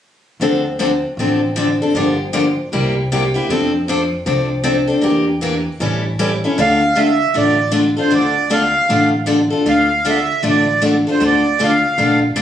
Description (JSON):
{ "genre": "acoustic string swing (jazz manouche)", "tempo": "156 BPM", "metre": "4/4", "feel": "swing 62% on 8ths", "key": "D minor", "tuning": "A4 = 440 Hz", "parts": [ { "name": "picked steel-string acoustic guitar", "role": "accompaniment", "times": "0.4-12.4 s", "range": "C3 to A4", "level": "-15 LUFS", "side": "left 2 dB", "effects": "none" }, { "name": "upright bass", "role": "bass", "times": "0.4-12.4 s", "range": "G1 to F2", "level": "-24 LUFS", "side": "right 1 dB", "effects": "none" }, { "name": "accordion", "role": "melody", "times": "6.6-12.2 s", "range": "C5 to F5", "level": "-16 LUFS", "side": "right 2 dB", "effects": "none" } ], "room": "wet studio reverb, RT60 0.7 s", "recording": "recorded on a phone in the room, studio reverb", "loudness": "-14 LUFS", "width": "side -10 dB against mid", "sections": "0.4-6.6 A section; 6.6-12.4 B section", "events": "none", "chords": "0.4 Dm7; 1.9 Gm7; 2.7 C7; 3.5 F6; 5.0 Em7b5; 5.8 A7; 6.6 Dm", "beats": "| 0.40 0.79 1.18 1.56 | 1.95 2.34 2.72 3.11 | 3.50 3.88 4.27 4.66 | 5.04 5.43 5.81 6.20 | 6.58 6.97 7.36 7.74 | 8.13 8.51 8.90 9.28 | 9.67 10.05 10.44 10.82 | 11.21 11.59 11.98 12.36" }